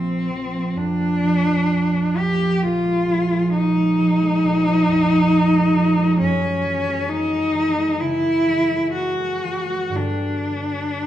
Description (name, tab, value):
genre	classical, impressionist duo for cello and harp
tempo	58-69 BPM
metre	4/4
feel	rubato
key	unclear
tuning	A4 = 440 Hz
part	warm cello	melody	0.0-11.1 s	C4 to G4	-20 LUFS	left 1 dB	none
part	concert harp	accompaniment	0.0-11.1 s	Bb1 to F#4	-20 LUFS	right 2 dB	none
room	moderate recital hall reverb, RT60 1.6 s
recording	none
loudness	-17 LUFS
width	side -12 dB against mid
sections	0.0-11.1 A section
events	none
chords	0.0 Bbadd9; 2.6 Dbadd9/Bb; 6.2 F#9; 10.0 Gmaj7